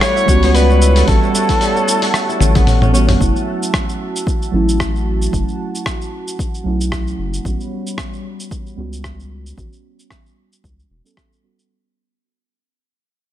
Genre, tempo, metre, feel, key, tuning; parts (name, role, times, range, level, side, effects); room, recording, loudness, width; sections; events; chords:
organic downtempo; 113 BPM; 4/4; swing 56% on 16ths; A mixolydian; A4 = 439 Hz
warm kamancheh; melody; 0.0-2.7 s; A4 to C#5; -19 LUFS; equal; digital delay
muted felt-like synth keys; accompaniment; 0.0-11.7 s; F#3 to A4; -22 LUFS; right 3 dB; chorus, sidechain pumping, tape echo
warm analog pad; sustained chords; 0.0-11.7 s; G3 to B5; -26 LUFS; right 1 dB; chorus, sidechain pumping
kora; arpeggios; 0.0-4.8 s; G3 to A4; -23 LUFS; left 2 dB; tape echo
dusty soul sampler-style drum kit; drums; 0.0-11.7 s; hi-hat, rim click, shaker, toms; -21 LUFS; left 1 dB
wind-like tuned noise texture; texture; 0.0-3.2 s; F#5; -31 LUFS; right 3 dB; built-in reverb
round analog bass; bass; 0.3-11.0 s; E1 to C#2; -16 LUFS; equal; sidechain pumping
electronic kick drum; drums; 0.3-11.3 s; -20 LUFS; equal
light reverb; -13 LUFS; side -12 dB against mid
0.0-3.2 A section; 3.2-11.7 B section
drum fill 2.4-3.2; fade-out 3.2-11.7
0.0 A13; 3.2 F#m7; 7.5 A13